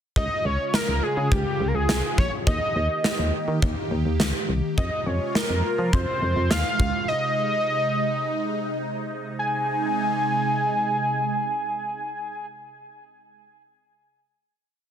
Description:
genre	synth-pop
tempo	104 BPM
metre	4/4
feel	straight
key	Ab major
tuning	A4 = 442 Hz
part	fat analog lead	melody	0.2-12.5 s	G4 to Ab5	-25 LUFS	equal	chorus, ping-pong delay
part	phased analog pad	sustained chords	0.4-12.5 s	C3 to G4	-29 LUFS	right 2 dB	phaser, chorus
part	solid FM bass	bass	0.2-6.9 s	Bb1 to F3	-25 LUFS	equal	none
part	gated 80s drum kit	drums	0.2-6.9 s	kick drum, snare drum	-24 LUFS	equal	none
room	light reverb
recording	dense, heavily limited modern master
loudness	-22 LUFS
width	side -9 dB against mid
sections	0.2-9.4 verse; 9.4-11.7 final chord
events	none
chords	0.2 Db; 2.5 Eb; 4.8 Fm; 7.1 Ab

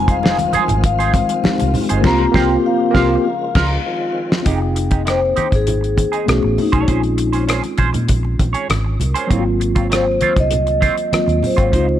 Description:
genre	lush 1970s-style soul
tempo	99 BPM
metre	4/4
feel	straight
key	F minor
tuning	A4 = 442 Hz
part	vibraphone with soft mallets	melody	0.0-12.0 s	Eb4 to Bb5	-20 LUFS	left 3 dB	tape echo
part	mellow tine electric piano	accompaniment	0.0-12.0 s	Gb3 to G5	-21 LUFS	equal	overdrive, medium stereo tremolo
part	tonewheel organ	sustained chords	0.0-4.5 s	C3 to G4	-27 LUFS	equal	slow rotary speaker, overdrive, chorus vibrato
part	vintage muted fingered electric bass	bass	0.0-12.0 s	F1 to Bb2	-20 LUFS	equal	none
part	clean electric guitar	riff	0.1-11.9 s	Gb3 to C#5	-24 LUFS	right 7 dB	wah
part	damped 70s drum kit	drums	0.1-11.9 s	crash cymbal, hi-hat, kick drum, rim click, snare drum	-19 LUFS	equal	none
part	congas	percussion	0.2-12.0 s	none	-26 LUFS	right 4 dB	none
part	vibraphone with soft mallets	texture	1.1-12.0 s	Ab3 to Eb5	-29 LUFS	left 3 dB	none
room	small room ambience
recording	none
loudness	-14 LUFS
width	side -11 dB against mid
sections	0.0-4.5 A section; 4.5-12.0 B section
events	band accent 2.0-4.5; drum fill 3.2-4.5; tine electric piano fill 3.2-4.5; vibraphone solo 4.5-12.0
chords	0.0 Fm7; 2.0 C7sus4; 3.2 Db6; 3.9 Fm7; 4.5 Fm9; 6.3 Bm9; 6.9 Bbm9; 9.3 Ab13

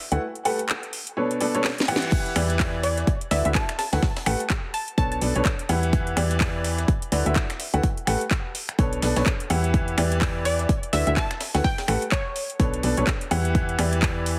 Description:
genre	piano house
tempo	126 BPM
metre	4/4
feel	swing 59% on 16ths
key	E dorian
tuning	A4 = 440 Hz
part	bright upright piano	riff	0.1-14.4 s	B2 to F#5	-29 LUFS	equal	sidechain pumping, tape echo
part	solid FM bass	bass	0.1-14.4 s	A1 to E2	-27 LUFS	equal	sidechain pumping
part	house drum kit	drums	0.1-14.4 s	crash cymbal, finger snaps, handclaps, hi-hat, snare drum	-31 LUFS	equal	none
part	reverse cymbal	sound effects	1.5-2.1 s	none	-40 LUFS	equal	none
part	breakbeat sampler-style drum kit	drums	2.1-14.4 s	hi-hat, snare drum	-39 LUFS	equal	sidechain pumping on hats, high-pass filter on hats, high-pass filter on snare
part	electronic kick drum	drums	2.1-14.1 s	none	-26 LUFS	equal	none
part	glassy wavetable pluck	melody	2.8-5.2, 10.5-12.7 s	C#5 to A5	-31 LUFS	equal	chorus, vintage 12-bit sampler grit, tape echo
room	light reverb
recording	heavily compressed radio sound, multiband compression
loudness	-24 LUFS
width	mono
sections	0.0-14.4 A section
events	drum fill 1.6-2.1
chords	0.2 Asus2; 1.2 Bm9; 2.1 Em7; 3.1 D69; 4.0 Asus2; 5.0 Bm9; 5.9 Em7; 6.9 D69; 7.8 Asus2; 8.8 Bm9; 9.7 Em7; 10.7 D69; 11.6 A9; 12.6 Bm9; 13.5 Em7

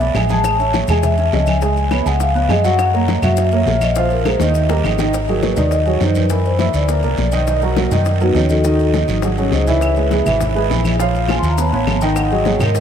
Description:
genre	Afro-Cuban jazz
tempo	205 BPM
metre	4/4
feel	straight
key	G# minor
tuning	A4 = 438 Hz
part	warm grand piano	accompaniment	0.0-12.8 s	D#3 to G#5	-19 LUFS	right 4 dB	lush chorus
part	hollow-body short-scale fingered electric bass	bass	0.0-12.8 s	G#1 to G#2	-18 LUFS	equal	none
part	congas	percussion	0.0-12.8 s	none	-26 LUFS	left 1 dB	none
part	maracas	percussion	0.0-12.8 s	none	-37 LUFS	left 10 dB	none
part	bongos	percussion	0.1-12.8 s	none	-27 LUFS	left 8 dB	none
part	guiro	percussion	0.1-12.8 s	none	-30 LUFS	right 8 dB	none
part	claves	percussion	0.2-5.0, 9.8-12.8 s	none	-33 LUFS	equal	none
part	vibraphone with soft mallets	melody	0.3-12.8 s	B3 to B#5	-20 LUFS	left 3 dB	diffuse ambient delay
room	moderate huge ambient reverb, RT60 6.4 s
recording	dreamy mix soaked in reverb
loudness	-14 LUFS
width	side -8 dB against mid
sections	0.0-5.1 A section; 5.1-12.8 B section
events	drum fill 4.4-5.1, 9.1-9.8; vibraphone solo 5.1-12.8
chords	0.4 Amaj7; 1.6 C#7; 2.8 F#; 4.0 A#5; 4.5 D#; 5.1 G#5; 6.3 F#aug7; 7.5 Bmaj7; 8.7 D#dim; 9.2 G#7b13; 9.8 C#m7; 11.0 A#5; 11.6 B13; 12.2 G#5

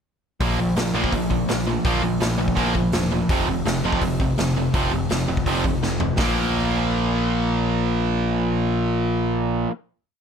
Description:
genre	punk rock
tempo	166 BPM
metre	4/4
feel	straight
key	unclear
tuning	A4 = 440 Hz
part	distorted electric guitar	riff	0.4-9.7 s	F2 to Bb3	-24 LUFS	right 10 dB	overdrive
part	sludgy distorted guitar	riff	0.4-9.7 s	F2 to Bb3	-25 LUFS	left 12 dB	overdrive
part	growling picked electric bass	bass	0.4-9.6 s	E1 to Bb1	-27 LUFS	left 1 dB	overdrive
part	raw garage drum kit	drums	0.4-6.3 s	hi-hat, kick drum, snare drum, toms	-25 LUFS	equal	none
room	little or no reverb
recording	none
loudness	-19 LUFS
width	side -7 dB against mid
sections	0.4-6.2 verse; 6.2-9.1 final chord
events	drum fill 5.8-6.2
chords	0.4 Bb5; 3.3 F5; 6.2 Bb5

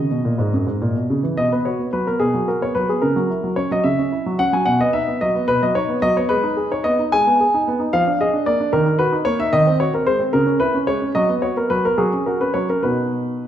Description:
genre	classical-period piano sonatina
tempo	73 BPM (dotted quarters)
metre	6/8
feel	rubato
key	B major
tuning	A4 = 439 Hz
part	warm grand piano	solo	0.0-13.5 s	F#2 to G#5	-16 LUFS	equal	none
room	wet recital hall reverb, RT60 1.3 s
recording	none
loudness	-16 LUFS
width	side -10 dB against mid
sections	0.0-1.4 A section; 1.4-13.5 B section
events	none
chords	0.0 B; 0.5 F#; 1.4 B5; 3.0 F#7/C#; 4.7 B; 6.3 G#m; 7.9 A#7/E#; 8.7 D#m; 9.5 G#7/D#; 10.3 C#m; 11.1 B5/F#; 12.0 F#5; 12.8 B

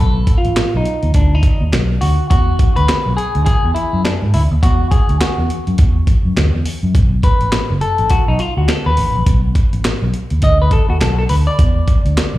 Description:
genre	funk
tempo	103 BPM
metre	4/4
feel	swing 60% on 16ths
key	unclear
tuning	A4 = 440 Hz
part	semi-hollow electric guitar	accompaniment	0.0-12.0 s	D4 to D#5	-20 LUFS	left 1 dB	spring reverb, slapback echo
part	vintage muted fingered electric bass	bass	0.0-12.4 s	F#1 to G#2	-15 LUFS	equal	none
part	breakbeat sampler-style drum kit	drums	0.3-12.3 s	handclaps, hi-hat, kick drum, snare drum	-15 LUFS	equal	none
room	digital ambience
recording	live gig heard through the venue's PA, club reverb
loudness	-12 LUFS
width	side -16 dB against mid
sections	0.0-12.4 A section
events	clean electric guitar solo 0.0-12.4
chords	0.0 B7; 2.3 E9; 6.9 B7; 11.6 E7(no3)

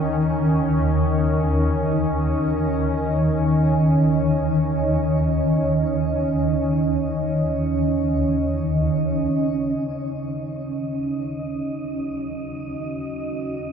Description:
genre	dark ambient drone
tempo	free time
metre	none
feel	none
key	unclear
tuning	A4 = 440 Hz
part	deep dark ambient pad	sustained chords	0.0-13.7 s	Eb3 to Eb5	-22 LUFS	equal	chorus, built-in reverb, shimmer reverb
part	swarming drone	drone	0.0-13.7 s	Eb2 to Eb3	-23 LUFS	equal	built-in reverb
part	wind-like tuned noise texture	texture	10.0-13.7 s	Eb5	-42 LUFS	right 1 dB	built-in reverb, shimmer reverb
room	wet huge ambient reverb, RT60 7.6 s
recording	none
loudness	-19 LUFS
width	side -7 dB against mid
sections	0.0-9.3 A section; 9.3-13.7 B section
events	filter sweep on synth drone 0.0-9.3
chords	0.0 Dbsus2/Eb; 9.3 Ebm7

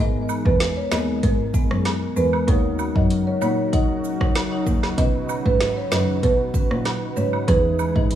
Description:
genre	dancehall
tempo	96 BPM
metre	4/4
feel	straight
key	G# minor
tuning	A4 = 442 Hz
part	folk marimba with medium mallets	melody	0.0-8.1 s	A#4 to D#5	-25 LUFS	right 2 dB	tape echo
part	marimba with medium mallets	accompaniment	0.0-8.2 s	D#3 to C#5	-25 LUFS	left 2 dB	none
part	warm analog pad	sustained chords	0.0-8.2 s	B2 to B4	-31 LUFS	right 2 dB	chorus, sidechain pumping
part	dark cello	bass	0.0-8.1 s	D#2 to B2	-25 LUFS	equal	none
part	cabasa and woodblock	percussion	0.3-7.9 s	none	-33 LUFS	right 4 dB	none
part	afro-pop drum kit	drums	0.5-8.2 s	hi-hat, kick drum, rim click, snare drum	-22 LUFS	right 1 dB	none
room	light reverb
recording	small room ambience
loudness	-18 LUFS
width	side -11 dB against mid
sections	0.0-8.2 A section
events	none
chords	0.0 G#madd9; 2.5 D#m7; 5.0 Badd9; 7.5 Emaj7

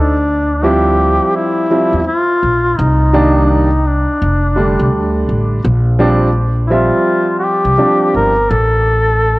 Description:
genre	hip hop, jazz-hop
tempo	84 BPM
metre	4/4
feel	swing 61% on 16ths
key	unclear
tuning	A4 = 441 Hz
part	warm duduk	melody	0.0-9.4 s	D4 to Bb4	-14 LUFS	left 1 dB	none
part	warm upright piano	accompaniment	0.0-8.3 s	D3 to E5	-15 LUFS	right 1 dB	none
part	upright bass	bass	0.0-9.4 s	F1 to E2	-14 LUFS	equal	none
room	moderate spring reverb, RT60 2.8 s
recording	home recording on cassette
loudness	-11 LUFS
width	side -20 dB against mid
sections	0.0-9.4 A section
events	none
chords	0.0 Dm11; 2.8 Cm7; 4.2 F69; 5.6 Bb69; 8.5 N.C.

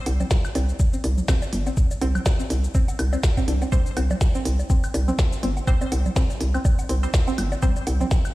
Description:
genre	minimal techno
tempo	123 BPM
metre	4/4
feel	swing 57% on 16ths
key	unclear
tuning	A4 = 440 Hz
part	hollow knocking FM bass	bass	0.1-8.0 s	G1 to C2	-22 LUFS	equal	sidechain pumping
part	minimal click drum kit	drums	0.1-8.3 s	cabasa, hi-hat, snare drum	-31 LUFS	equal	none
part	woodblock, bongos and congas	percussion	0.1-8.3 s	none	-33 LUFS	right 1 dB	ping-pong delay
part	string-like resonator pluck	riff	0.2-8.1 s	C4 to D4	-31 LUFS	right 1 dB	chorus, vintage 12-bit sampler grit, sidechain pumping, tape echo
part	electronic kick drum	drums	0.3-8.2 s	none	-20 LUFS	equal	none
part	wavetable chord stab	stabs	3.7-7.7 s	G3 to C5	-34 LUFS	right 1 dB	ping-pong delay
room	little or no reverb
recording	played on a big sound system in a bare room, stone room reverb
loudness	-20 LUFS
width	side -18 dB against mid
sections	0.0-8.3 A section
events	filter sweep on synth pluck 0.0-8.3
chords	0.0 C5

